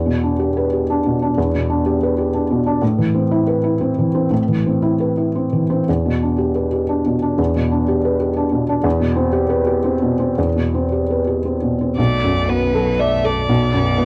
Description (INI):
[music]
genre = neoclassical piano and strings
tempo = 109-127 BPM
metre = 3/4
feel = rubato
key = E minor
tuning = A4 = 437 Hz
[part]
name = felt-muted upright piano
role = accompaniment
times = 0.0-14.1 s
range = B1 to D5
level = -18 LUFS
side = equal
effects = none
[part]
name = rich violin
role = melody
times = 12.0-14.1 s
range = B4 to E5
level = -23 LUFS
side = equal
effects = none
[part]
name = clear cello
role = second line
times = 12.0-14.1 s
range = F#3 to B3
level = -29 LUFS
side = equal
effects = none
[part]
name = warm double bass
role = bass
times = 12.0-14.1 s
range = B1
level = -28 LUFS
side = equal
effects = none
[sound]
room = moderate studio reverb, RT60 0.5 s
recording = home recording on cassette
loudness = -18 LUFS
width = mono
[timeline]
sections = 0.0-12.0 A section; 12.0-14.1 B section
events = none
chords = 0.0 Em7; 2.8 Amadd9; 5.9 Em7; 8.8 Cmaj7/E; 12.0 Bm7